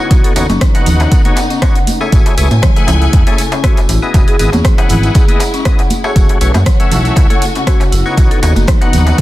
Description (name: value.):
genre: afro house.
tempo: 119 BPM.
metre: 4/4.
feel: swing 54% on 16ths.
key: unclear.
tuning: A4 = 440 Hz.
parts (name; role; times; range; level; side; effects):
dark studio string section; sustained chords; 0.0-9.2 s; C#3 to G#5; -22 LUFS; left 1 dB; sidechain pumping.
overdriven tonewheel organ; stabs; 0.0-9.2 s; A3 to F#5; -19 LUFS; left 2 dB; chorus vibrato, sidechain pumping, dub echo.
marimba with medium hard mallets; arpeggios; 0.1-9.2 s; C#4 to F#5; -21 LUFS; left 1 dB; sidechain pumping, dub echo.
smooth synth bass; bass; 0.1-9.1 s; E1 to A2; -13 LUFS; equal; sidechain pumping.
deep house drum kit; drums; 0.1-9.2 s; hi-hat, rim click; -21 LUFS; equal; overdrive, studio reverb.
electronic kick drum; drums; 0.1-9.2 s; none; -11 LUFS; equal; overdrive, studio reverb.
darbuka; percussion; 0.1-9.2 s; none; -25 LUFS; left 2 dB; none.
tambourine; percussion; 0.1-9.2 s; none; -28 LUFS; right 4 dB; none.
congas; percussion; 0.5-9.0 s; none; -20 LUFS; right 2 dB; none.
room: small room ambience.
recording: dense, heavily limited modern master.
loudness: -9 LUFS.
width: side -16 dB against mid.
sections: 0.0-9.2 A section.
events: none.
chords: 0.1 Badd9; 2.1 Amaj7; 4.1 Emaj7; 6.2 F#m; 8.2 Badd9.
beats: | 0.11 0.61 1.12 1.62 | 2.12 2.63 3.13 3.64 | 4.14 4.65 5.15 5.66 | 6.16 6.66 7.17 7.67 | 8.18 8.68 9.18.